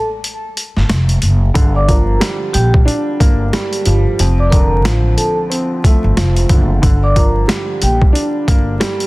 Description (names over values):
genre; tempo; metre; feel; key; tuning
hip hop, boom-bap hip-hop; 91 BPM; 4/4; swing 60% on 16ths; G minor; A4 = 439 Hz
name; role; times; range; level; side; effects
vibraphone with soft mallets; melody; 0.0-8.0 s; G4 to D6; -20 LUFS; equal; high-pass filter, low-pass filter, tape echo
boom bap sampler-style drum kit; drums; 0.2-9.1 s; hi-hat, kick drum, snare drum; -14 LUFS; equal; overdrive
upright bass; bass; 0.8-8.8 s; F1 to Bb1; -14 LUFS; equal; none
dark grand piano; accompaniment; 1.5-9.1 s; F2 to D4; -18 LUFS; right 1 dB; cassette tape, high-pass filter, low-pass filter
room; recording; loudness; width
studio ambience; dense, heavily limited modern master, vinyl crackle; -11 LUFS; side -21 dB against mid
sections
0.0-9.1 A section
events
break 0.0-1.6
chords
0.0 N.C.; 1.6 Gm7; 4.2 Dm7/F; 6.8 Gm7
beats
0.23 0.89 | 1.55 2.21 2.87 3.53 | 4.19 4.85 5.51 6.17 | 6.83 7.49 8.15 8.81